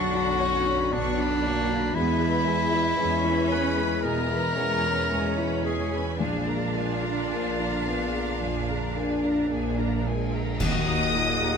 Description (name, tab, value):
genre	cinematic, emotional film score for orchestra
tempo	53-59 BPM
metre	4/4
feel	rubato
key	unclear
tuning	A4 = 440 Hz
part	warm symphonic violin section	melody	0.0-11.6 s	G#5 to Eb6	-35 LUFS	left 2 dB	none
part	bright clarinet	second line	0.0-11.6 s	D4 to Eb5	-29 LUFS	left 2 dB	none
part	warm symphonic violin section	second line	0.0-11.6 s	D5 to B5	-34 LUFS	left 2 dB	none
part	felt-muted upright piano	accompaniment	0.0-11.6 s	A#1 to D5	-31 LUFS	left 4 dB	none
part	warm symphonic viola section	accompaniment	0.0-11.6 s	D3 to B4	-35 LUFS	right 2 dB	none
part	mellow French horn section	sustained chords	0.0-11.6 s	D3 to E4	-32 LUFS	left 4 dB	none
part	rich symphonic cello section	bass	0.0-11.6 s	Eb2 to D4	-32 LUFS	right 4 dB	none
part	rich symphonic double bass section	bass	0.0-11.6 s	A#1 to E2	-31 LUFS	right 4 dB	none
part	cymbal swell, clash cymbals and concert bass drum	percussion	6.2-11.6 s	none	-34 LUFS	equal	none
part	silver concert flute	second line	10.6-11.6 s	Eb5	-33 LUFS	left 3 dB	none
part	warm cor anglais	second line	10.6-11.6 s	Gb5	-36 LUFS	right 8 dB	none
room	moderate scoring stage reverb, RT60 1.9 s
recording	none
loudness	-23 LUFS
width	side -6 dB against mid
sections	0.0-10.6 A section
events	band accent 10.6-11.6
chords	0.0 Bmadd9; 1.9 E; 6.2 A#7; 10.6 Ebm